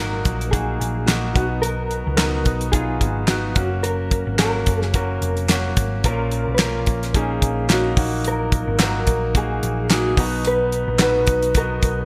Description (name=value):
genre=piano-driven pop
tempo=109 BPM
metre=4/4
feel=swing 56% on 16ths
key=unclear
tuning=A4 = 439 Hz
part: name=mellow electric guitar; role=melody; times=0.0-12.0 s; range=F#4 to B4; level=-27 LUFS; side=equal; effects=analog chorus
part: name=bright concert grand piano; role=accompaniment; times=0.0-12.1 s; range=A#2 to G#4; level=-28 LUFS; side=equal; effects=none
part: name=mellow tonewheel organ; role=sustained chords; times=0.0-12.1 s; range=E#3 to A#4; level=-35 LUFS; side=equal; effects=none
part: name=hollow-body short-scale picked electric bass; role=bass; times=0.0-12.1 s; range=E#1 to C#2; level=-27 LUFS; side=equal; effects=none
part: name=damped 70s drum kit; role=drums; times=0.2-12.0 s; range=handclaps, hi-hat, kick drum, snare drum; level=-22 LUFS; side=equal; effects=gated reverb
room=light reverb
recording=bright 1980s-style digital production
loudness=-20 LUFS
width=mono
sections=0.0-12.1 A section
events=none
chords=0.0 D#m; 1.4 B; 3.6 F#; 6.0 A#m; 8.0 D#m; 10.2 B